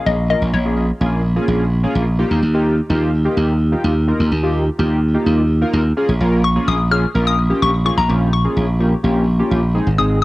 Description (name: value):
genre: pop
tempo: 127 BPM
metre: 4/4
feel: straight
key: Bb dorian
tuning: A4 = 439 Hz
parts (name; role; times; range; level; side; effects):
- hollow square pluck; melody; 0.0-1.2, 6.4-10.2 s; Db5 to F6; -20 LUFS; left 4 dB; chorus, cassette tape, analog delay
- chorused polysynth; accompaniment; 0.0-10.2 s; Ab3 to Bb4; -20 LUFS; equal; cassette tape
- slap bass; bass; 0.1-10.2 s; Ab1 to Eb2; -16 LUFS; equal; none
room: light reverb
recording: home recording on cassette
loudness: -14 LUFS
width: side -19 dB against mid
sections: 0.0-6.0 A section; 6.0-10.2 B section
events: none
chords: 0.0 Bbm7; 2.2 Ebadd9; 6.0 Bbm7